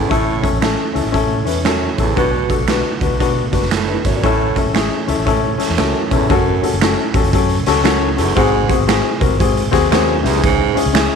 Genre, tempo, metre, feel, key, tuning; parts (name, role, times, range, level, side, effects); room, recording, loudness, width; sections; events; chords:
uptempo 1960s-style soul; 116 BPM; 4/4; swing 64% on 8ths; A major; A4 = 439 Hz
dark upright piano; accompaniment; 0.0-11.2 s; B#3 to D5; -17 LUFS; left 10 dB
percussive tonewheel organ; sustained chords; 0.0-6.3 s; D3 to A4; -28 LUFS; right 2 dB
breathy baritone saxophone; riff; 0.0-10.8 s; E2 to B2; -21 LUFS; right 10 dB
vintage muted fingered electric bass; bass; 0.0-11.1 s; F#1 to B2; -21 LUFS; right 1 dB
raw garage drum kit; drums; 0.1-11.1 s; hi-hat, kick drum, snare drum; -18 LUFS; right 4 dB
finger snap; percussion; 0.6-11.1 s; -26 LUFS; right 10 dB
light reverb, small room ambience; 1960s-style stereo with parts hard left and right; -13 LUFS; side -6 dB against mid
0.0-6.3 A section; 6.3-11.2 B section
0.0 A; 2.2 Bm; 4.2 A; 6.3 F#m; 8.4 G#7; 10.2 C#m